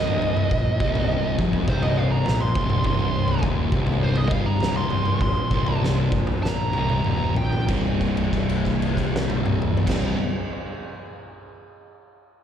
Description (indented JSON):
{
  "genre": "stoner and doom metal",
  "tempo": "93-103 BPM",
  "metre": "4/4",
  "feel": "straight",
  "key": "C minor",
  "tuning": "A4 = 440 Hz",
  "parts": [
    { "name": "fuzz lead guitar", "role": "melody", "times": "0.0-7.7 s", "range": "C5 to C6", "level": "-28 LUFS", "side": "right 3 dB", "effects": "wah, distortion, slapback echo, analog delay" },
    { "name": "thick fuzz guitar", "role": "riff", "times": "0.0-10.2 s", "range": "C2 to C3", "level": "-25 LUFS", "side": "left 6 dB", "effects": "distortion" },
    { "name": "thick fuzz guitar", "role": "riff", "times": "0.0-10.2 s", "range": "C2 to C3", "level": "-29 LUFS", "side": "right 10 dB", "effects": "distortion" },
    { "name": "fuzz fingered electric bass", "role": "bass", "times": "0.0-10.1 s", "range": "C1 to Bb1", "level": "-28 LUFS", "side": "right 1 dB", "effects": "overdrive, tube saturation" },
    { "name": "oversized low-tuned drum kit", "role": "drums", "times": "0.1-10.0 s", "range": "crash cymbal, kick drum, snare drum, toms", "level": "-25 LUFS", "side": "equal", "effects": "none" }
  ],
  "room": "studio ambience",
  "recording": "live gig heard through the venue's PA, recital hall reverb",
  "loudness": "-20 LUFS",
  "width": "side -9 dB against mid",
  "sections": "0.0-7.7 A section; 7.7-10.3 B section",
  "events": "lead electric guitar solo 0.0-7.7; slowing down 2.8-7.7; drum fill 6.4-7.7; held note 7.7-9.9",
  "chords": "0.0 Cm; 7.7 C5",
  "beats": "| 0.51 1.09 1.68 2.26 | 2.85 3.43 4.02 4.61 | 5.21 5.81 6.43 7.05 | 7.69 8.33 8.97 9.61"
}